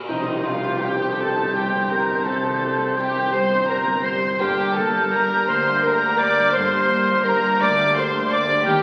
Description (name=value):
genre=cinematic, emotional film score for orchestra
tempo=56 BPM (dotted quarters)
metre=6/8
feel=rubato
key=G minor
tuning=A4 = 441 Hz
part: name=dark studio cello section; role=bass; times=0.0-8.8 s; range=D2 to C3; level=-34 LUFS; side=equal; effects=none
part: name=warm studio violin section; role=melody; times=0.1-8.8 s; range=Eb5 to D6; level=-28 LUFS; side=equal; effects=none
part: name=clear studio violin section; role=second line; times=0.1-8.8 s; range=Eb4 to D5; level=-27 LUFS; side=equal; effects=none
part: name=mellow clarinet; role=second line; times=0.1-8.8 s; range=Eb4 to D5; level=-28 LUFS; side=equal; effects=none
part: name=silver concert flute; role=second line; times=0.1-8.7 s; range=G6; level=-28 LUFS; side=equal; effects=none
part: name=warm oboe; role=second line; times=0.1-8.8 s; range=Bb4 to C5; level=-29 LUFS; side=equal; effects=none
part: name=rich studio viola section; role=accompaniment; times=0.1-8.8 s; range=C3 to G4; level=-33 LUFS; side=equal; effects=none
part: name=mellow French horn section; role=sustained chords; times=0.1-8.8 s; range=G3 to Eb4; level=-32 LUFS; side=equal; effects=none
part: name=concert harp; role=arpeggios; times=0.1-8.8 s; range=G2 to D5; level=-39 LUFS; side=equal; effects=none
part: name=warm studio double bass section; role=bass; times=0.1-8.8 s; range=G1 to Eb2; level=-37 LUFS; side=equal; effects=none
part: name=tam-tam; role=percussion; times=0.1-2.9 s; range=none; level=-35 LUFS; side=equal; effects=none
room=wet recital hall reverb, RT60 1.4 s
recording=very old 78 rpm record, vinyl crackle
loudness=-20 LUFS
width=mono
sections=0.1-8.8 A section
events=band accent 0.1-0.8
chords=0.1 Cm; 4.4 Gm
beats=| 0.10 1.19 | 2.26 3.33 | 4.41 5.48 | 6.54 7.60 | 8.66